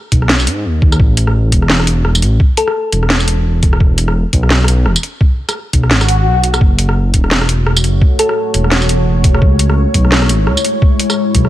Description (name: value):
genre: half-time drum and bass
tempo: 171 BPM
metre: 4/4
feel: swing 58% on 16ths, half-time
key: F# minor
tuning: A4 = 440 Hz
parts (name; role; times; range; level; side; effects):
- dark detuned saw bass; bass; 0.1-11.5 s; E1 to G#2; -12 LUFS; equal; none
- drum and bass drum kit; drums; 0.1-11.5 s; hi-hat, rim click, snare drum, tambourine; -16 LUFS; equal; none
- electronic kick drum; drums; 0.1-11.4 s; none; -11 LUFS; equal; none
- thumb-piano-like synth pluck; melody; 2.6-3.1, 8.2-8.7 s; A4; -19 LUFS; left 2 dB; chorus, cassette tape, digital delay
- swell; sound effects; 6.0-6.6 s; none; -18 LUFS; left 2 dB; none
- deep dark ambient pad; sustained chords; 7.4-11.5 s; G#3 to C#5; -18 LUFS; left 1 dB; chorus, built-in reverb, sidechain pumping
room: digital ambience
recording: none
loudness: -10 LUFS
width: side -14 dB against mid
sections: 0.0-11.5 A section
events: swell 6.0-6.6; kick drops out 6.3-6.6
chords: 0.0 N.C.; 1.0 A5; 3.8 E; 6.6 F#m; 9.4 C#m